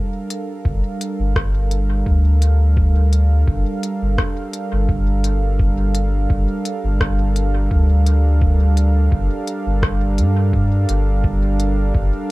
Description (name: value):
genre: ambient dub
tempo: 85 BPM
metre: 4/4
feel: straight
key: G minor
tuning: A4 = 440 Hz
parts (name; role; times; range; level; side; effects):
- warm analog pad; sustained chords; 0.0-12.3 s; G3 to F5; -23 LUFS; right 2 dB; chorus
- organic electronic drum kit; drums; 0.3-11.7 s; hi-hat, rim click; -27 LUFS; left 1 dB; dub echo
- soft dub sub bass; bass; 0.7-12.1 s; G1 to G2; -16 LUFS; equal; none
- electronic kick drum; drums; 0.7-12.1 s; none; -21 LUFS; equal; none
room: little or no reverb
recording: dark, warm production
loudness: -15 LUFS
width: side -20 dB against mid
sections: 0.0-12.3 A section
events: none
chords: 0.0 Gm9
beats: 0.66 1.36 2.07 | 2.77 3.48 4.18 4.89 | 5.60 6.30 7.01 7.71 | 8.42 9.13 9.83 10.54 | 11.24 11.95